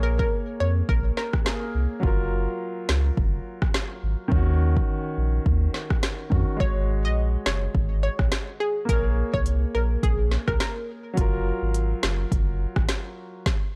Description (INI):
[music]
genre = dancehall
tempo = 105 BPM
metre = 4/4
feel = swing 56% on 16ths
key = unclear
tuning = A4 = 442 Hz
[part]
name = analog pluck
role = melody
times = 0.0-1.3, 6.6-11.0 s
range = Ab4 to Eb5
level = -32 LUFS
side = equal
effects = chorus, tape echo
[part]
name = clear baby grand piano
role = accompaniment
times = 0.0-13.5 s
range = Eb3 to Db5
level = -34 LUFS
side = equal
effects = sidechain pumping
[part]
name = saturated sub bass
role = bass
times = 0.0-12.9 s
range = Gb1 to F2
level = -26 LUFS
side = equal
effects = none
[part]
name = afro-pop drum kit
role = drums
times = 0.2-13.6 s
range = hi-hat, kick drum, rim click, snare drum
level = -27 LUFS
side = equal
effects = none
[sound]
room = digital ambience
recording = dry, gritty hardware recording, cassette tape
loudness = -24 LUFS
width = mono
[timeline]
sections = 0.0-6.6 A section; 6.6-13.8 B section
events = none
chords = 0.0 Bbm7; 2.0 Gbmaj7; 4.3 Ebm7; 6.6 Ab7sus4; 8.9 Bbm7; 11.2 Gbmaj7